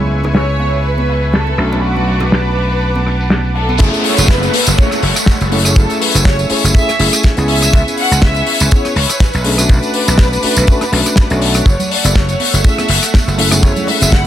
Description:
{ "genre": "nu-disco, nu disco", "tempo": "122 BPM", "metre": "4/4", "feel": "swing 55% on 16ths", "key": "F# minor", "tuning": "A4 = 441 Hz", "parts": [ { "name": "dark studio violin section", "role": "melody", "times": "0.0-14.3 s", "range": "F#4 to F#5", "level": "-20 LUFS", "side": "equal", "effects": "digital delay" }, { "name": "tine electric piano", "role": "accompaniment", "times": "0.0-14.3 s", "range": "A3 to A4", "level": "-20 LUFS", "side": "left 1 dB", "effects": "none" }, { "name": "lush unison pad", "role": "sustained chords", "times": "0.0-14.3 s", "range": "A3 to D6", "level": "-23 LUFS", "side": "right 1 dB", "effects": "chorus, sidechain pumping" }, { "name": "slap bass", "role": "bass", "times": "0.0-14.3 s", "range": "F#1 to C#2", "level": "-15 LUFS", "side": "equal", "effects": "none" }, { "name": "damped 70s drum kit", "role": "drums", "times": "0.0-14.2 s", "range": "crash cymbal, hi-hat, rim click, snare drum, tambourine", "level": "-17 LUFS", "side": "left 2 dB", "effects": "low-pass filter on cymbals, studio reverb, low-pass filter on hats, low-pass filter on snare, low-pass filter on perc, low-pass filter on room" }, { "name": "congas and bongos", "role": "percussion", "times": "0.0-3.8, 11.8-14.1 s", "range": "none", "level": "-24 LUFS", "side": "right 3 dB", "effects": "none" }, { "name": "kick drum", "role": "drums", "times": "3.8-14.2 s", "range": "none", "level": "-10 LUFS", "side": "equal", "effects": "studio reverb" }, { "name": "downlifter", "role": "sound effects", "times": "3.8-7.7 s", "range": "none", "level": "-23 LUFS", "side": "equal", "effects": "none" } ], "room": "small room ambience", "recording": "none", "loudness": "-10 LUFS", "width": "side -12 dB against mid", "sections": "0.0-3.8 A section; 3.8-14.3 B section", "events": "filter sweep on tine electric piano 0.0-3.8; drop 3.8-14.3", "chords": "0.0 C#m7; 1.6 Bm7; 3.8 F#m7; 7.5 C#m7; 9.5 Bm7; 11.7 F#m7", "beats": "0.35 0.84 1.34 | 1.83 2.32 2.81 3.30 | 3.80 4.29 4.78 5.27 | 5.76 6.25 6.75 7.24 | 7.73 8.22 8.71 9.21 | 9.70 10.19 10.68 11.17 | 11.66 12.16 12.65 13.14 | 13.63 14.12" }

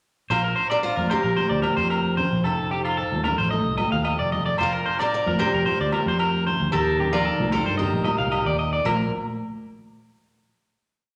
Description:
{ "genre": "highlife guitar band", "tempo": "112 BPM", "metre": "4/4", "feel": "straight", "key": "Bb major", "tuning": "A4 = 441 Hz", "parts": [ { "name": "picked steel-string acoustic guitar", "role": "melody", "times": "0.3-9.1 s", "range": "F4 to D5", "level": "-29 LUFS", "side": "equal", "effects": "none" }, { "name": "flamenco guitar", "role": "accompaniment", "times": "0.3-9.1 s", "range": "F2 to C5", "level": "-36 LUFS", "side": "equal", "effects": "none" }, { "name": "electric guitar at the edge of break-up", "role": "arpeggios", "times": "0.3-9.1 s", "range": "F4 to F5", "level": "-28 LUFS", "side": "equal", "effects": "none" }, { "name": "fingered electric bass", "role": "bass", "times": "0.3-9.1 s", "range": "F1 to G2", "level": "-30 LUFS", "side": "equal", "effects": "none" }, { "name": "agogo bells", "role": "percussion", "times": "0.3-9.0 s", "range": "none", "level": "-32 LUFS", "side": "equal", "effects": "none" }, { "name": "congas", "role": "percussion", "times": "1.0-9.1 s", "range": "none", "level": "-31 LUFS", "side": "equal", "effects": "none" } ], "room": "wet large studio reverb, RT60 1.4 s", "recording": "none", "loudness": "-23 LUFS", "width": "mono", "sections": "0.3-8.8 A section; 8.8-11.0 final chord", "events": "none", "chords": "0.3 Bbadd9; 2.4 F7; 4.6 Bbadd9/F; 6.7 Ebadd9; 8.8 N.C.", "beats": "| 0.31 0.84 1.38 1.91 | 2.44 2.98 3.51 4.05 | 4.58 5.12 5.65 6.18 | 6.72 7.25 7.78 8.31 | 8.85" }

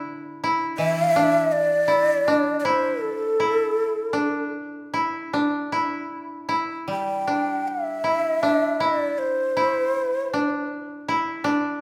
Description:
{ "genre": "japanese traditional, Japanese chamber music", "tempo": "79 BPM", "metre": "4/4", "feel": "uneven beats, rubato", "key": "D suspended pentatonic", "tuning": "A4 = 438 Hz", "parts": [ { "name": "koto", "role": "second line", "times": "0.0-11.8 s", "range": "D4 to E4", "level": "-27 LUFS", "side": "equal", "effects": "none" }, { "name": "koto", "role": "accompaniment", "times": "0.0-9.2 s", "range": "D3 to G3", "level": "-34 LUFS", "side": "equal", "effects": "none" }, { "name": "breathy mellow shakuhachi", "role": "melody", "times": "0.8-10.7 s", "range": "A4 to G5", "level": "-24 LUFS", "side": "equal", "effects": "none" } ], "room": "moderate recital hall reverb, RT60 1.7 s", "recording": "none", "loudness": "-23 LUFS", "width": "mono", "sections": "0.0-11.8 A section", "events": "none", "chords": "none", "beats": "| 0.06 0.80 1.53 2.27 | 3.02 3.76 4.53 5.32 | 6.10 6.88 7.66 8.43 | 9.19 9.95 10.71 11.46" }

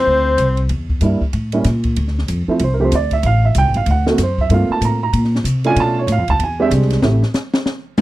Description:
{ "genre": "jazz, small-group swing and bop", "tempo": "190 BPM", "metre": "4/4", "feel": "swing 61% on 8ths", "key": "D minor", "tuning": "A4 = 439 Hz", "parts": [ { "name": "mellow flugelhorn", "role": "melody", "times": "0.0-0.7 s", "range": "C5", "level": "-15 LUFS", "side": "left 3 dB", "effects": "none" }, { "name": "breathy tenor saxophone", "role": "second line", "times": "0.0-0.7 s", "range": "C4", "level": "-20 LUFS", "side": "right 1 dB", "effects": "none" }, { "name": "dark upright piano", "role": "accompaniment", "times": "0.0-7.2 s", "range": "F3 to Bb5", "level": "-17 LUFS", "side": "right 3 dB", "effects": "none" }, { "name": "upright bass", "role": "bass", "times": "0.0-7.2 s", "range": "G1 to C3", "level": "-16 LUFS", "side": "equal", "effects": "none" }, { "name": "open jazz drum kit", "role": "drums", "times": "0.4-8.0 s", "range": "hi-hat, kick drum, ride cymbal, snare drum, toms", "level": "-21 LUFS", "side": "equal", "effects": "none" } ], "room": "little or no reverb", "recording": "dry, close 1970s-style studio recording", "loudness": "-14 LUFS", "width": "side -16 dB against mid", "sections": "0.0-2.0 A section; 2.0-8.0 B section", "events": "none", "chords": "0.0 Dm9; 0.7 Em7b5; 1.3 A7b9; 2.0 Dm9; 3.2 G13sus4; 3.9 D7b13; 4.5 Gm11; 5.8 Bm7b5; 6.4 E7alt; 7.0 Am7", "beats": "0.07 0.39 | 0.70 1.02 1.33 1.65 | 1.97 2.29 2.60 2.92 | 3.23 3.55 3.87 4.18 | 4.50 4.82 5.13 5.45 | 5.76 6.08 6.40 6.71 | 7.03 7.35 7.66 7.98" }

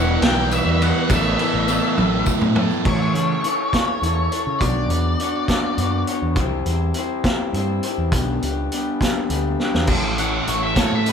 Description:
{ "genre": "indie rock", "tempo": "68 BPM (dotted quarters)", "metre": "6/8", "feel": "straight", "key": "A mixolydian", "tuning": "A4 = 440 Hz", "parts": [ { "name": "octave-fuzz lead guitar", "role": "melody", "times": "0.0-6.0, 10.2-11.1 s", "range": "B4 to G5", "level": "-24 LUFS", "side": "left 2 dB", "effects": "distortion" }, { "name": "biting overdriven guitar", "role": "riff", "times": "0.0-3.3, 9.9-11.1 s", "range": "A2 to B4", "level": "-24 LUFS", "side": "right 7 dB", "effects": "none" }, { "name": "electric guitar through a small old amp", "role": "riff", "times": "0.0-11.1 s", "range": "A2 to C#5", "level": "-24 LUFS", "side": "left 4 dB", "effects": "none" }, { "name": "overdriven picked electric bass", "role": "bass", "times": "0.0-11.1 s", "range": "E1 to C#3", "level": "-23 LUFS", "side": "equal", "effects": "none" }, { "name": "vintage drum kit", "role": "drums", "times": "0.2-11.1 s", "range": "crash cymbal, hi-hat, kick drum, ride cymbal, snare drum, toms", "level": "-22 LUFS", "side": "right 1 dB", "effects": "none" }, { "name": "tambourine", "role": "percussion", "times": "0.5-2.8 s", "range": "none", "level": "-36 LUFS", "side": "left 7 dB", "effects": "none" } ], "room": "moderate large studio reverb, RT60 1.0 s", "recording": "band playing live in one room", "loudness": "-18 LUFS", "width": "side -7 dB against mid", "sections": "0.0-2.8 A section; 2.8-9.9 B section; 9.9-11.1 C section", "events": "drum fill 2.0-2.8, 9.6; lead electric guitar solo 9.9-11.1", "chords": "0.0 Em; 1.1 Asus2; 2.8 A; 4.6 Bmadd9; 6.4 C; 8.1 G/B; 9.9 A", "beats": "0.22 | 1.09 1.97 | 2.85 3.73 | 4.61 5.49 | 6.37 7.25 | 8.13 9.01 | 9.89 10.77" }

